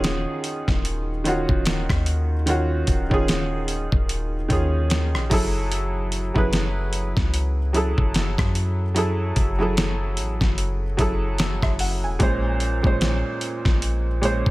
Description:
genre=contemporary R&B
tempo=74 BPM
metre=4/4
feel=swing 58% on 16ths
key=unclear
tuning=A4 = 436 Hz
part: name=felt-muted upright piano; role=accompaniment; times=0.0-14.5 s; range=A#2 to G#5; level=-25 LUFS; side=right 1 dB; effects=none
part: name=clean 808-style bass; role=bass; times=0.0-14.5 s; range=D#1 to F#2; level=-24 LUFS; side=equal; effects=none
part: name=dusty soul sampler-style drum kit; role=drums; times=0.0-14.5 s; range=hi-hat, kick drum, rim click, snare drum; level=-23 LUFS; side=equal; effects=none
room=digital ambience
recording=none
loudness=-20 LUFS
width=side -19 dB against mid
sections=0.0-14.5 A section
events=none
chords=0.0 D#m9; 5.3 F#m9; 12.2 A#m9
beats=0.04 0.85 1.66 | 2.47 3.28 4.09 4.90 | 5.71 6.53 7.34 8.15 | 8.96 9.77 10.58 11.39 | 12.20 13.01 13.82

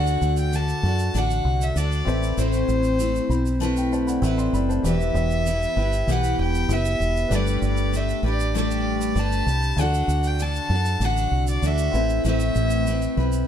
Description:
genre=acoustic pop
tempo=97 BPM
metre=4/4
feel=straight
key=unclear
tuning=A4 = 438 Hz
part: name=rich violin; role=melody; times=0.0-13.5 s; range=C5 to A5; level=-27 LUFS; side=left 1 dB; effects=plate reverb
part: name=felt-muted upright piano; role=accompaniment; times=0.0-13.5 s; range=B3 to C6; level=-35 LUFS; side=left 5 dB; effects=plate reverb
part: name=picked steel-string acoustic guitar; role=accompaniment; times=0.0-13.5 s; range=A2 to B4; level=-25 LUFS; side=left 1 dB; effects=double-tracked left and right
part: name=deep dub fingered electric bass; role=bass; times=0.0-13.4 s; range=E1 to F#2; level=-23 LUFS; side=equal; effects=none
part: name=tube shaker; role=percussion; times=0.1-13.5 s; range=none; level=-40 LUFS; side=right 13 dB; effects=none
room=light reverb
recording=dark, warm production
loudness=-20 LUFS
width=side -9 dB against mid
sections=0.0-13.5 A section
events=felt piano fill 3.0-4.8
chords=0.0 D; 2.1 Amadd9; 4.8 Em; 7.3 Gadd9; 9.8 D; 11.9 Amadd9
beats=0.53 1.14 1.76 | 2.38 2.99 3.61 4.23 | 4.84 5.46 6.08 6.69 | 7.31 7.93 8.54 9.16 | 9.78 10.39 11.01 11.63 | 12.25 12.86

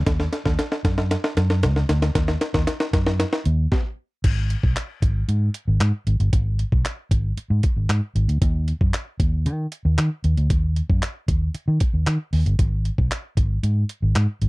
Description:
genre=dance-pop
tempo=115 BPM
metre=4/4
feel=straight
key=unclear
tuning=A4 = 440 Hz
part: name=vintage muted fingered electric bass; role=bass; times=0.0-14.5 s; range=G1 to D#3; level=-20 LUFS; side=equal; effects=sidechain pumping
part: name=boom bap sampler-style drum kit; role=drums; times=0.1-14.5 s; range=crash cymbal, handclaps, hi-hat, kick drum, snare drum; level=-22 LUFS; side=equal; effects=none
room=little or no reverb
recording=dry, close 1970s-style studio recording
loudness=-19 LUFS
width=side -24 dB against mid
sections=0.0-4.2 A section; 4.2-14.5 B section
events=build-up 0.0-4.2; drum fill 0.0-3.7; stop 3.7-4.2; drop 4.2-14.5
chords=none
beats=| 0.07 0.59 1.11 1.63 | 2.15 2.68 3.20 3.72 | 4.24 4.76 5.29 5.81 | 6.33 6.85 7.37 7.89 | 8.41 8.94 9.46 9.98 | 10.50 11.02 11.55 12.07 | 12.59 13.11 13.63 14.15

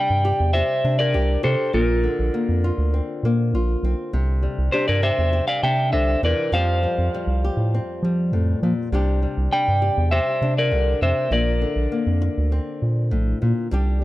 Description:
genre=highlife guitar band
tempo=100 BPM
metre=4/4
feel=straight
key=C mixolydian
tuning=A4 = 442 Hz
part: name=clean electric guitar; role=melody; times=0.0-13.1 s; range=F4 to G5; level=-22 LUFS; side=equal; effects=tape echo
part: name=nylon-string guitar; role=accompaniment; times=0.0-14.0 s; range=F2 to G4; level=-26 LUFS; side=left 3 dB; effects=none
part: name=round analog bass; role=bass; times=0.1-14.0 s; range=Bb1 to F3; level=-20 LUFS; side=equal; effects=none
room=little or no reverb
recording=none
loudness=-18 LUFS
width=side -16 dB against mid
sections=0.0-14.0 A section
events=none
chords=0.0 Csus2; 1.7 Bbadd9; 4.1 Csus2; 6.5 Fadd9; 8.9 Csus2; 11.3 Bbadd9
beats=0.54 1.14 | 1.74 2.33 2.93 3.53 | 4.13 4.73 5.33 5.92 | 6.52 7.12 7.72 8.32 | 8.92 9.52 10.11 10.71 | 11.31 11.91 12.51 13.11 | 13.70

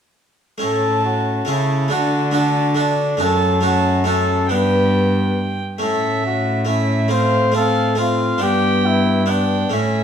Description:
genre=classical, renaissance-style consort dance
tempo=139 BPM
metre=3/4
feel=straight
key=A mixolydian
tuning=A4 = 437 Hz
part: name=mellow cornet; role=melody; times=0.6-10.0 s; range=C#4 to C5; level=-21 LUFS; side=left 3 dB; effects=none
part: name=rich violin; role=second line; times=0.6-10.0 s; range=E5 to A5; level=-24 LUFS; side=right 5 dB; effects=none
part: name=harpsichord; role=accompaniment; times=0.6-10.0 s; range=F#2 to F#4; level=-23 LUFS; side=right 1 dB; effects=none
part: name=mellow trombone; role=accompaniment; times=0.6-10.0 s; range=A3 to D4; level=-24 LUFS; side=left 2 dB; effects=none
part: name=rich cello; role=bass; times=0.6-10.0 s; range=F#2 to D3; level=-20 LUFS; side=right 1 dB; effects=none
room=moderate stone room reverb, RT60 1.0 s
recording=none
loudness=-15 LUFS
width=side -8 dB against mid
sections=0.6-10.0 A section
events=none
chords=0.6 A; 1.9 D; 3.2 F#m; 4.5 G; 5.8 A; 7.1 F/A; 8.4 G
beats=| 0.62 1.05 1.49 | 1.92 2.35 2.78 | 3.21 3.65 4.08 | 4.52 4.95 5.39 | 5.83 6.26 6.70 | 7.13 7.56 7.99 | 8.42 8.86 9.29 | 9.73

